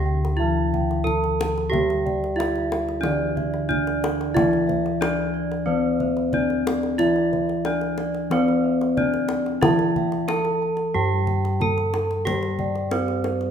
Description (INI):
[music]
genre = Javanese gamelan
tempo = 91 BPM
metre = 4/4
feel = straight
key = D slendro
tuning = A4 = 441 Hz
[part]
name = gamelan-type bronze metallophone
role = melody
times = 0.0-13.5 s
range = C4-45c to A4+25c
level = -25 LUFS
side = right 3 dB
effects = none
[part]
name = gamelan-type bronze metallophone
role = accompaniment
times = 0.0-13.5 s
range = D3 to C4-45c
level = -27 LUFS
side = left 5 dB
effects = none
[part]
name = gamelan-type bossed gongs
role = arpeggios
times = 0.0-13.3 s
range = C5-45c to A5+25c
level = -29 LUFS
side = left 1 dB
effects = none
[part]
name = gamelan-type bronze metallophone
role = arpeggios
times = 0.0-13.5 s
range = C5-45c to A5+25c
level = -31 LUFS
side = right 6 dB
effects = none
[part]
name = gamelan-type bossed gongs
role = bass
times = 0.0-13.5 s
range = D2 to G4-35c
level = -27 LUFS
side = equal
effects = none
[part]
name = kendang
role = percussion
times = 0.2-13.5 s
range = none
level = -29 LUFS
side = left 2 dB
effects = none
[sound]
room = wet recital hall reverb, RT60 1.4 s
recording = minimal, uncompressed stereo recording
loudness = -20 LUFS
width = side -8 dB against mid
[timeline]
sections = 0.0-13.5 A section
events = none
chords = none